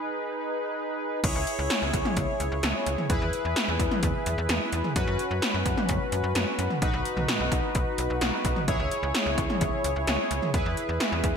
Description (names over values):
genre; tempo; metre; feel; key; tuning
synth-pop; 129 BPM; 4/4; straight; C# minor; A4 = 439 Hz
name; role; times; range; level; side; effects
analog synth brass; accompaniment; 0.0-11.4 s; C#4 to C#5; -28 LUFS; equal; chorus
slap-like FM bass; bass; 1.2-11.3 s; B1 to F#2; -30 LUFS; equal; none
80s electronic pad drums; drums; 1.2-11.3 s; crash cymbal, hi-hat, kick drum, snare drum, toms; -27 LUFS; equal; gated reverb on snare and toms, overdrive, gated reverb
room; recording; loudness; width
moderate lush hall reverb, RT60 1.8 s; bright 1980s-style digital production; -24 LUFS; side -6 dB against mid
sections
0.0-1.2 A section; 1.2-11.4 B section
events
break 0.0-1.2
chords
0.0 G#m; 1.2 C#m; 3.1 E; 5.0 F#sus4; 6.8 B; 8.7 C#m; 10.5 E